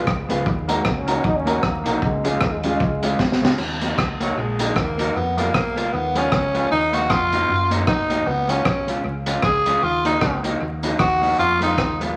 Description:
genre	ska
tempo	154 BPM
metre	4/4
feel	swing 58% on 8ths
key	Eb minor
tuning	A4 = 441 Hz
part	breathy trombone	melody	0.0-3.4 s	Gb3 to Eb4	-29 LUFS	equal	none
part	electric guitar at the edge of break-up	accompaniment	0.0-12.1 s	Ab3 to Gb4	-28 LUFS	equal	analog delay
part	warm upright piano	stabs	0.0-3.5 s	Ab3 to Cb5	-28 LUFS	equal	none
part	fingered electric bass	bass	0.1-12.1 s	Bb1 to Gb2	-30 LUFS	equal	none
part	crunchy breakbeat drum kit	drums	0.1-12.1 s	crash cymbal, hi-hat, kick drum, rim click, snare drum	-26 LUFS	equal	analog delay
part	growling tenor saxophone	melody	4.2-12.0 s	Gb3 to Ab4	-23 LUFS	equal	none
room	wet large studio reverb, RT60 1.2 s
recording	vinyl crackle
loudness	-20 LUFS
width	mono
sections	0.0-3.6 A section; 3.6-12.2 B section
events	drum fill 3.2-3.6; tenor saxophone solo 3.6-12.2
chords	0.5 Ebm; 2.0 Db; 3.6 Ebm; 5.1 Fdim; 6.7 Ebm; 8.3 Db; 9.8 Ebm; 11.4 Fdim

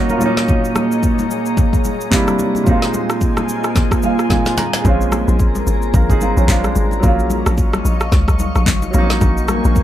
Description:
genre	amapiano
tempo	110 BPM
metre	4/4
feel	swing 58% on 16ths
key	Bb minor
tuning	A4 = 440 Hz
part	clear grand piano	accompaniment	0.0-9.8 s	Bb2 to Bb5	-20 LUFS	right 2 dB	none
part	glassy FM pad	sustained chords	0.0-9.8 s	Gb3 to Db6	-22 LUFS	equal	ensemble chorus, built-in reverb
part	deep house drum kit	drums	0.1-9.8 s	handclaps, kick drum, rim click, shaker, snare drum	-17 LUFS	equal	none
part	congas	percussion	0.1-9.6 s	none	-24 LUFS	left 4 dB	none
part	hollow log drum bass	bass	4.8-9.8 s	Ab1 to Db2	-16 LUFS	equal	none
part	swell	sound effects	9.4-9.8 s	none	-23 LUFS	left 3 dB	none
room	light reverb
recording	none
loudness	-13 LUFS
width	side -12 dB against mid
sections	0.0-9.8 A section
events	grand piano fill 3.8-4.8; drum fill 4.3-4.8; swell 9.4-9.8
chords	0.2 Ab9sus4/Bb; 2.1 C7; 2.7 Fm7/Bb; 4.8 Bbm9; 6.5 Bb7; 7.0 Ebm9/Bb; 8.9 Ab9sus4/Bb

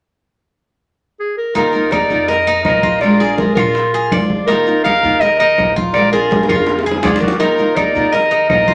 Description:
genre	latin, Cuban son and guajira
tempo	164 BPM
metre	4/4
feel	straight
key	unclear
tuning	A4 = 441 Hz
part	clear clarinet	melody	1.2-8.7 s	Ab4 to F5	-17 LUFS	equal	none
part	clear trumpet	second line	1.5-8.7 s	F4 to Bb4	-25 LUFS	equal	none
part	picked steel-string acoustic guitar	accompaniment	1.5-8.7 s	Eb3 to Bb4	-21 LUFS	equal	none
part	Cuban tres	arpeggios	1.6-8.7 s	Eb4 to Eb5	-23 LUFS	equal	none
part	upright bass	bass	1.6-8.7 s	Bb1 to Bb2	-32 LUFS	equal	none
part	bongos	percussion	1.6-8.7 s	none	-26 LUFS	equal	none
part	congas	percussion	1.6-8.7 s	none	-25 LUFS	equal	none
part	claves	percussion	1.9-8.7 s	none	-28 LUFS	equal	none
room	wet club reverb, RT60 0.5 s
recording	none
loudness	-14 LUFS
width	mono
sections	0.1-1.6 A section; 1.6-8.7 B section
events	drum fill 6.3-7.4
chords	0.1 N.C.; 1.6 Ebsus2; 3.0 Bb7; 4.5 Ebsus2; 5.9 Bb7; 7.4 Ebsus2

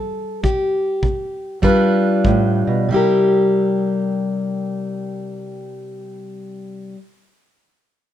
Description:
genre	acoustic country blues, solo or duo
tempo	94-104 BPM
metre	4/4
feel	swing 68% on 8ths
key	C mixolydian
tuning	A4 = 435 Hz
part	fingerpicked plugged-in steel-string acoustic guitar	melody	0.0-7.0 s	G2 to B4	-18 LUFS	equal	none
part	kick drum	drums	0.4-2.4 s	none	-21 LUFS	equal	none
room	moderate studio reverb, RT60 0.7 s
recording	minimal, uncompressed stereo recording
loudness	-16 LUFS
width	side -11 dB against mid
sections	0.0-2.9 A section; 2.9-5.4 B section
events	slowing down 0.0-2.9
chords	0.4 C5; 1.6 G7; 2.9 C7

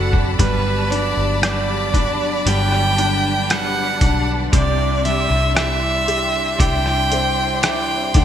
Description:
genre	pop ballad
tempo	58 BPM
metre	4/4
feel	straight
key	unclear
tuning	A4 = 440 Hz
part	rich violin	melody	0.0-8.2 s	B4 to G5	-20 LUFS	right 1 dB	none
part	clear concert grand piano	accompaniment	0.0-8.2 s	C3 to A4	-24 LUFS	left 4 dB	ensemble chorus
part	warm studio string section	sustained chords	0.0-8.2 s	D4 to C6	-26 LUFS	left 2 dB	none
part	twelve-string electric guitar	arpeggios	0.0-8.2 s	G2 to B4	-26 LUFS	right 7 dB	lush chorus
part	vintage muted fingered electric bass	bass	0.0-8.2 s	F#1 to D2	-22 LUFS	equal	none
part	trip hop sampler-style drum kit	drums	0.1-8.2 s	hi-hat, kick drum, rim click	-20 LUFS	equal	none
room	moderate lush hall reverb, RT60 2.4 s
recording	bright 1980s-style digital production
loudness	-16 LUFS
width	side -10 dB against mid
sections	0.0-8.2 A section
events	none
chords	0.4 Gmaj7; 4.5 Cadd9

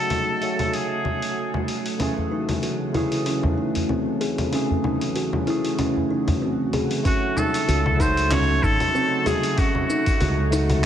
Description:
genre	organic downtempo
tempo	95 BPM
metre	4/4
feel	swing 55% on 16ths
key	unclear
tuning	A4 = 440 Hz
part	trumpet with straight mute	melody	0.0-1.7, 7.1-10.5 s	F#4 to C#5	-25 LUFS	equal	tape echo, slapback echo
part	barky tine electric piano	accompaniment	0.0-10.9 s	C#3 to G#4	-29 LUFS	right 2 dB	overdrive, phaser, sidechain pumping, low-pass filter, tape echo, slapback echo
part	bowed-like drone	sustained chords	0.0-10.9 s	C#3 to F#4	-30 LUFS	left 1 dB	built-in reverb, sidechain pumping
part	wind-like tuned noise texture	texture	0.0-7.1 s	A3 to F#4	-38 LUFS	left 2 dB	none
part	dusty soul sampler-style drum kit	drums	0.1-10.8 s	congas, handclaps, hi-hat, shaker	-29 LUFS	left 2 dB	none
part	kalimba	arpeggios	2.0-10.7 s	B#3 to G#4	-26 LUFS	equal	tape echo, slapback echo
part	udu	percussion	2.2-6.4 s	none	-27 LUFS	equal	none
part	electronic kick drum	drums	7.1-10.2 s	none	-23 LUFS	equal	none
part	mellow fretless electric bass	bass	7.7-10.9 s	G#1 to C#2	-22 LUFS	equal	analog chorus, sidechain pumping
room	moderate lush hall reverb, RT60 2.6 s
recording	big arena sound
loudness	-20 LUFS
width	side -10 dB against mid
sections	0.0-7.1 A section; 7.1-10.9 B section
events	filter sweep on tine electric piano 0.0-7.1; filter sweep on synth drone 0.0-7.1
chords	0.0 D#m7b5/C#; 2.0 F#m7/C#; 7.1 D#m7b5

